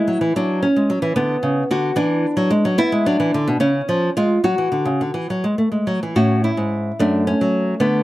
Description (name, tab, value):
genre	classical, baroque-style dance for nylon-string guitar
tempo	73 BPM (dotted quarters)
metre	6/8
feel	rubato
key	unclear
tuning	A4 = 442 Hz
part	nylon-string guitar	solo	0.0-8.0 s	F#2 to F#4	-16 LUFS	equal	none
room	little or no reverb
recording	close, detailed microphones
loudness	-16 LUFS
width	side -16 dB against mid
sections	0.0-6.2 A section; 6.2-8.0 A section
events	none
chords	0.4 F#5; 1.2 Bm; 2.0 E7; 2.8 G#m7b5; 3.6 C#; 4.5 N.C.; 6.2 A; 7.0 F#m